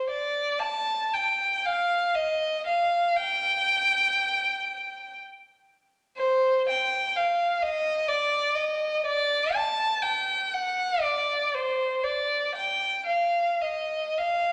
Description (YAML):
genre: classical, free, expressive piece for unaccompanied violin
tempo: 53-64 BPM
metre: 3/4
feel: rubato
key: unclear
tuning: A4 = 438 Hz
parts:
  - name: rich violin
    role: solo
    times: 0.0-14.5 s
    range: C5 to A5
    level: -26 LUFS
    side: equal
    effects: none
room: wet recital hall reverb, RT60 1.5 s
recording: none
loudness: -26 LUFS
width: mono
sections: 0.0-14.5 A section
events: none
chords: none